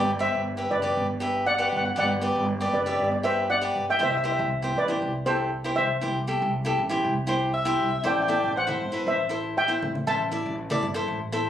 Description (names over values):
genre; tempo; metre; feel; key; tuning
calypso; 119 BPM; 4/4; straight; G major; A4 = 440 Hz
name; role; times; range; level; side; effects
cavaquinho; accompaniment; 0.0-11.5 s; E4 to E5; -27 LUFS; equal; none
upright bass; bass; 0.0-11.5 s; F#1 to C2; -31 LUFS; right 1 dB; none
steel pan; melody; 0.2-10.5 s; A4 to A5; -25 LUFS; equal; none
breathy alto saxophone; second line; 7.3-9.5 s; C5 to E5; -29 LUFS; left 2 dB; none
congas; percussion; 8.7-10.9 s; none; -33 LUFS; left 1 dB; none
room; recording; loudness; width
moderate studio reverb, RT60 0.7 s; recorded on a phone in the room, club reverb; -23 LUFS; side -10 dB against mid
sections
0.0-11.5 A section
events
none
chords
0.0 Gmaj7; 4.0 C6; 8.0 Am7